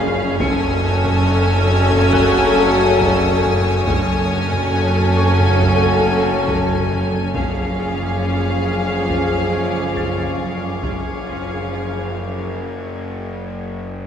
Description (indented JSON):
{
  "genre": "cinematic, suspense film score",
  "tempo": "69 BPM",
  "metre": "4/4",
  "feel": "straight",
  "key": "F# harmonic minor",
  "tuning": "A4 = 440 Hz",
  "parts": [
    { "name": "rich studio violin section", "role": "melody", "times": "0.0-12.5 s", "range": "E#5 to G#5", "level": "-25 LUFS", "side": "left 3 dB", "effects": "none" },
    { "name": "warm chamber violin section", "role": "second line", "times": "0.0-12.5 s", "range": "G#4 to A4", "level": "-25 LUFS", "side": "left 1 dB", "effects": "none" },
    { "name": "rich chamber viola section", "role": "accompaniment", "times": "0.0-12.5 s", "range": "C#4", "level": "-24 LUFS", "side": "left 1 dB", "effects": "none" },
    { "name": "mellow French horn section", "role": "sustained chords", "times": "0.0-12.5 s", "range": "G#3 to A4", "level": "-26 LUFS", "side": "left 4 dB", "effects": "none" },
    { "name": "mellow trombone section", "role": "sustained chords", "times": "0.0-12.5 s", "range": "C#3 to F#3", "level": "-24 LUFS", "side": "right 1 dB", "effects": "none" },
    { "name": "pulsing gated texture", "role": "sustained chords", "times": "0.0-12.5 s", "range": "C#4 to G#5", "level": "-29 LUFS", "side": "left 1 dB", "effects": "none" },
    { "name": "rich chamber cello section", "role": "bass", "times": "0.0-12.5 s", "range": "F#2", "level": "-23 LUFS", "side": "right 1 dB", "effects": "none" },
    { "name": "rich studio double bass section", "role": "bass", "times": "0.0-12.5 s", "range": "F#1", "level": "-25 LUFS", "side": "right 2 dB", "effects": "none" },
    { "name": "bowed-like drone", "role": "drone", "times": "0.0-14.1 s", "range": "F#1", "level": "-25 LUFS", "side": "equal", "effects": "built-in reverb" },
    { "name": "clear grand piano", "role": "texture", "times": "0.0-14.1 s", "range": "E#5 to C#7", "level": "-34 LUFS", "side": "equal", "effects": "none" },
    { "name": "taiko ensemble", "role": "drums", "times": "0.4-11.7 s", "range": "none", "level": "-28 LUFS", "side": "equal", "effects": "none" },
    { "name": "rich chamber violin section", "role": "texture", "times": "0.4-13.8 s", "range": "C#6 to G#6", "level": "-30 LUFS", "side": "left 3 dB", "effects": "none" }
  ],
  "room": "wet concert hall reverb, RT60 2.2 s",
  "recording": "recorded in a church or concert hall",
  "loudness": "-15 LUFS",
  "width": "side -8 dB against mid",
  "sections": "0.0-14.1 A section",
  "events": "break 12.6-14.1",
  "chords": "0.4 F#madd9; 7.4 C#/F#",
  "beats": "| 0.40 1.26 2.13 3.00 | 3.87 4.74 5.61 6.48 | 7.35 8.22 9.09 9.96 | 10.83 11.70 12.57 13.44"
}